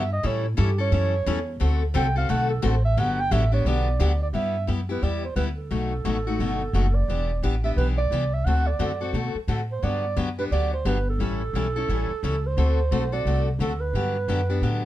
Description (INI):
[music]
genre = acoustic string swing (jazz manouche)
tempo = 175 BPM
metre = 4/4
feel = swing 62% on 8ths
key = G major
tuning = A4 = 440 Hz
[part]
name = breathy clarinet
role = melody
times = 0.0-14.8 s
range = E4 to G5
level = -28 LUFS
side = right 4 dB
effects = none
[part]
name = picked steel-string acoustic guitar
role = accompaniment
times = 0.0-14.8 s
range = B2 to A4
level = -28 LUFS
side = left 5 dB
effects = none
[part]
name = upright bass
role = bass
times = 0.0-14.8 s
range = E1 to B2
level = -24 LUFS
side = equal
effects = none
[sound]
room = light reverb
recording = dark, warm production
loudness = -22 LUFS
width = side -14 dB against mid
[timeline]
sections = 0.0-4.3 A section; 4.3-14.8 B section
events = clarinet solo 0.0-4.3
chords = 0.2 A7; 1.6 D7; 3.0 Gmaj7; 4.3 G6; 5.7 B7; 7.1 Em7; 8.5 D7; 9.8 Gmaj7; 11.2 A7; 12.6 D7; 13.9 Gmaj7